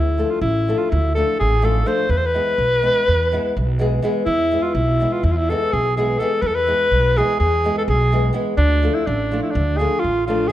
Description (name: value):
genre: balkan folk, Balkan wedding band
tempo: 250 BPM (eighths)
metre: 9/8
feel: straight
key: unclear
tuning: A4 = 440 Hz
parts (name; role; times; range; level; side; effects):
- clear alto saxophone; melody; 0.0-10.5 s; D4 to C5; -19 LUFS; equal; none
- upright bass; bass; 0.0-10.5 s; A1 to E2; -20 LUFS; equal; none
- flamenco guitar; accompaniment; 0.2-10.5 s; E3 to A4; -24 LUFS; left 2 dB; none
room: moderate recital hall reverb, RT60 1.6 s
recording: dark, warm production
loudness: -16 LUFS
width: side -13 dB against mid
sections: 0.0-4.3 A section; 4.3-10.5 A section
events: none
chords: 0.0 Dm; 2.1 E; 8.6 Dm